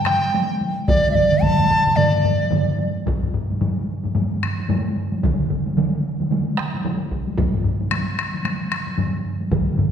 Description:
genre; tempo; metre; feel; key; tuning
japanese traditional, taiko drum ensemble; 111 BPM; 4/4; swing 60% on 16ths; unclear; A4 = 445 Hz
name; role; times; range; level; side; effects
large dizi; melody; 0.0-2.8 s; D5 to A5; -19 LUFS; equal; none
solo taiko drums; percussion; 0.1-9.9 s; none; -24 LUFS; left 2 dB; none
taiko ensemble; percussion; 0.1-9.7 s; none; -24 LUFS; equal; none
taiko ensemble; percussion; 0.1-9.9 s; none; -23 LUFS; right 3 dB; none
taiko ensemble; percussion; 0.9-9.7 s; none; -24 LUFS; equal; none
room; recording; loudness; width
wet scoring stage reverb, RT60 1.5 s; recorded in a church or concert hall; -18 LUFS; side -8 dB against mid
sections
0.0-3.1 A section; 3.1-9.9 B section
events
speeding up 0.0-9.9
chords
none

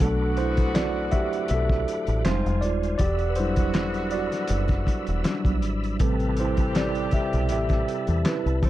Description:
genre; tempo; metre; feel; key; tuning
R&B, neo-soul; 80 BPM; 4/4; swing 54% on 16ths; A dorian; A4 = 439 Hz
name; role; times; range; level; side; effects
mellow tine electric piano; accompaniment; 0.0-8.7 s; C3 to E5; -26 LUFS; right 1 dB; slow stereo tremolo
tonewheel organ; sustained chords; 0.0-8.7 s; G4 to E6; -38 LUFS; left 1 dB; fast rotary speaker, chorus vibrato
clear horn section; stabs; 0.0-8.7 s; C3 to A4; -34 LUFS; equal; none
deep dub fingered electric bass; bass; 0.0-8.7 s; Eb1 to E2; -26 LUFS; equal; none
cloth-damped thuddy drum kit; drums; 0.0-8.7 s; handclaps, hi-hat, kick drum, snare drum; -25 LUFS; equal; none
room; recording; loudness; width
little or no reverb; dark, warm production; -22 LUFS; side -14 dB against mid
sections
0.0-8.7 A section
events
tine electric piano solo 0.0-8.7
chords
0.0 Bm7; 2.3 Fm7; 3.0 Em7; 6.0 Am9

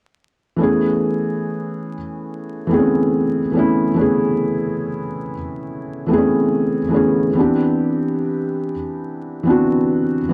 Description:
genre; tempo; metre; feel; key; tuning
hip hop; 71 BPM; 4/4; swing 57% on 16ths; A major; A4 = 439 Hz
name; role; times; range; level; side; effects
felt-muted upright piano; accompaniment; 0.6-10.3 s; E3 to G#4; -19 LUFS; equal; low-pass filter
room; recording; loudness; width
wet small room ambience, RT60 0.5 s; dark, warm production, vinyl crackle; -19 LUFS; mono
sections
0.6-10.3 A section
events
none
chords
0.6 Amaj9; 7.4 Cmaj9

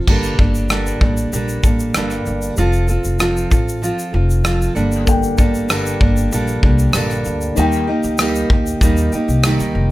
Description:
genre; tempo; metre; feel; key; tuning
acoustic pop; 96 BPM; 4/4; straight; G minor; A4 = 441 Hz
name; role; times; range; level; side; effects
fingerpicked steel-string acoustic guitar; accompaniment; 0.0-9.9 s; G2 to A4; -19 LUFS; right 2 dB; none
upright bass; bass; 0.0-9.9 s; F1 to Eb2; -19 LUFS; equal; none
modern studio drum kit; drums; 0.1-9.7 s; crash cymbal, kick drum, rim click, shaker; -17 LUFS; equal; none
felt-muted upright piano; accompaniment; 5.1-9.9 s; Bb3 to G5; -25 LUFS; left 7 dB; none
tambourine; percussion; 5.7-9.6 s; none; -33 LUFS; left 7 dB; none
room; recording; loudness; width
light reverb; none; -14 LUFS; side -17 dB against mid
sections
0.1-9.9 A section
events
none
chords
0.1 Gmadd9; 2.6 F; 4.8 Gmadd9; 7.6 Eb

